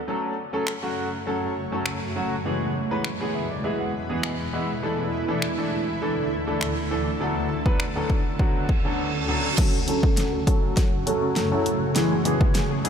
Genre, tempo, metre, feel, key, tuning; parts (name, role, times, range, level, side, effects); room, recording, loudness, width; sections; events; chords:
dance-pop; 101 BPM; 4/4; straight; F# minor; A4 = 440 Hz
clear baby grand piano; accompaniment; 0.1-12.9 s; D2 to B5; -27 LUFS; equal; lush chorus, sidechain pumping, low-pass filter
granular cloud pad; sustained chords; 0.9-12.9 s; D2 to C#5; -27 LUFS; equal; built-in reverb, sidechain pumping, low-pass filter
deep house drum kit; drums; 0.7-12.9 s; crash cymbal, finger snaps, hi-hat, kick drum, snare drum; -25 LUFS; equal; overdrive
reverse cymbal and riser; sound effects; 8.7-12.9 s; -34 LUFS; right 4 dB
analog pluck; arpeggios; 9.6-12.9 s; E3 to A4; -30 LUFS; left 3 dB; chorus, sidechain pumping, low-pass filter, tape echo
moderate huge ambient reverb, RT60 4.0 s; dreamy mix soaked in reverb; -22 LUFS; side -7 dB against mid
0.0-9.6 A section; 9.6-12.9 B section
grand piano fill 3.0-4.8; reverse cymbal 8.7-9.6; silent gap 9.0-9.6; build-up 9.6-12.9; drum fill 9.6-12.9; filter sweep 9.6-12.9
0.1 F#m; 2.5 E; 4.8 Dsus2; 7.2 Bm7/D; 9.6 F#m; 12.0 E